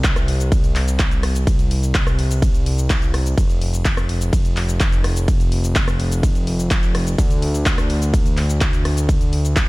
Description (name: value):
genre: EDM, festival progressive house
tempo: 126 BPM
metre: 4/4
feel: straight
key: unclear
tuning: A4 = 440 Hz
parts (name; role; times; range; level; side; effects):
- fat analog bass; bass; 0.0-9.7 s; C2 to D2; -20 LUFS; equal; sidechain pumping
- big-room dance drum kit; drums; 0.0-9.7 s; cabasa, handclaps, hi-hat, ride cymbal, rim click; -25 LUFS; equal; none
- electronic kick drum; drums; 0.0-9.7 s; none; -18 LUFS; equal; overdrive
room: little or no reverb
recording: none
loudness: -16 LUFS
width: side -22 dB against mid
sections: 0.0-9.7 A section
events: none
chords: none